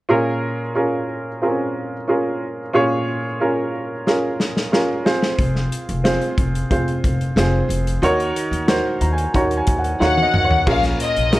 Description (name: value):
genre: piano-driven pop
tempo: 91 BPM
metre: 4/4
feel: straight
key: Bb minor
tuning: A4 = 441 Hz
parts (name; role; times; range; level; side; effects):
- warm upright piano; accompaniment; 0.1-11.4 s; Bb2 to Bb5; -19 LUFS; right 1 dB; none
- natural country drum kit; drums; 4.1-11.4 s; crash cymbal, hi-hat, kick drum, snare drum, toms; -22 LUFS; equal; none
- upright bass; bass; 5.4-11.4 s; F1 to Eb2; -22 LUFS; equal; none
- dark studio violin section; melody; 10.0-11.4 s; Eb5 to Gb5; -18 LUFS; left 3 dB; none
room: light reverb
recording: worn, warbling old tape, cassette tape, warbly pitch drift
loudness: -17 LUFS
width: side -17 dB against mid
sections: 0.1-10.7 A section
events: drum fill 4.1-5.4, 10.0-10.7; upright piano fill 8.7-10.7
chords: 0.1 Bbm7; 5.1 Fm; 8.0 Ebm7; 10.7 Bbm7